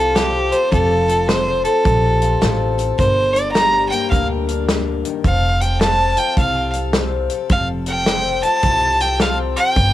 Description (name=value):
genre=honky-tonk and classic country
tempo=106 BPM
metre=4/4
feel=swing 64% on 8ths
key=unclear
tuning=A4 = 440 Hz
part: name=clear fiddle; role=melody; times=0.0-9.9 s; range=G4 to Bb5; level=-17 LUFS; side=right 1 dB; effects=cassette tape, analog delay
part: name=picked steel-string acoustic guitar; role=accompaniment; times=0.0-9.9 s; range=G2 to Bb4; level=-24 LUFS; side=left 10 dB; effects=cassette tape
part: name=upright bass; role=bass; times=0.0-9.9 s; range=F1 to D2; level=-21 LUFS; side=equal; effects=none
part: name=natural country drum kit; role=drums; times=0.2-9.9 s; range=hi-hat, kick drum, snare drum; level=-21 LUFS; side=equal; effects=cassette tape
room=light reverb, small room ambience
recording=home recording on cassette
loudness=-14 LUFS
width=side -14 dB against mid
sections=0.0-9.9 A section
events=none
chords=0.0 F; 3.0 Gm; 5.2 F